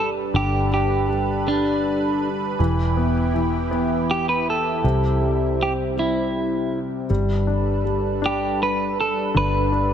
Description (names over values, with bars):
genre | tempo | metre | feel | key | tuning
pop | 53 BPM (dotted quarters) | 6/8 | straight | G major | A4 = 439 Hz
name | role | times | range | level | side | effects
clean electric guitar | melody | 0.0-9.9 s | D4 to B4 | -23 LUFS | right 1 dB | none
clear concert grand piano | accompaniment | 0.0-9.9 s | C3 to D4 | -25 LUFS | left 3 dB | none
lush unison pad | sustained chords | 0.0-9.9 s | C3 to B4 | -27 LUFS | right 3 dB | chorus
vintage muted fingered electric bass | bass | 0.0-9.9 s | E1 to C2 | -24 LUFS | right 1 dB | none
room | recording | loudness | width
light reverb | none | -19 LUFS | side -9 dB against mid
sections
0.0-9.9 A section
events
none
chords
0.0 Gadd9; 2.6 Em; 4.8 C; 7.1 Gadd9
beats
| 0.34 1.47 | 2.59 3.71 | 4.84 5.96 | 7.10 8.23 | 9.35